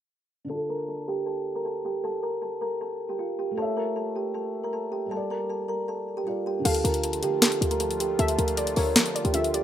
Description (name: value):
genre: hip hop, trap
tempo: 156 BPM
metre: 4/4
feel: half-time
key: D harmonic minor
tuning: A4 = 440 Hz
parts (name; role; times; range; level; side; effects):
- felt-muted upright piano; accompaniment; 0.4-9.6 s; D3 to E5; -36 LUFS; left 1 dB; low-pass filter
- kalimba; melody; 0.5-9.6 s; F4 to Bb5; -28 LUFS; right 1 dB; low-pass filter, ping-pong delay
- warbly dusty pluck; second line; 6.7-9.6 s; C#5 to F5; -32 LUFS; left 2 dB; chorus, ping-pong delay
- warm analog pad; sustained chords; 6.7-9.6 s; D3 to F4; -36 LUFS; equal; chorus
- short 808-style bass; bass; 6.7-9.6 s; D2 to F3; -29 LUFS; left 1 dB; none
- trap drum kit; drums; 6.7-9.6 s; crash cymbal, hi-hat, snare drum; -24 LUFS; left 1 dB; none
room: light reverb, digital ambience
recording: rough home demo mix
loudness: -25 LUFS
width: side -10 dB against mid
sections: 0.5-6.7 A section; 6.7-9.6 B section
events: filter sweep 0.5-6.7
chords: 0.5 Dm; 3.6 A; 5.1 Gm; 6.7 Dm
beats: | 0.50 0.88 1.27 1.65 | 2.04 2.42 2.81 3.19 | 3.58 3.96 4.34 4.73 | 5.11 5.50 5.88 6.27 | 6.65 7.04 7.42 7.81 | 8.19 8.57 8.96 9.34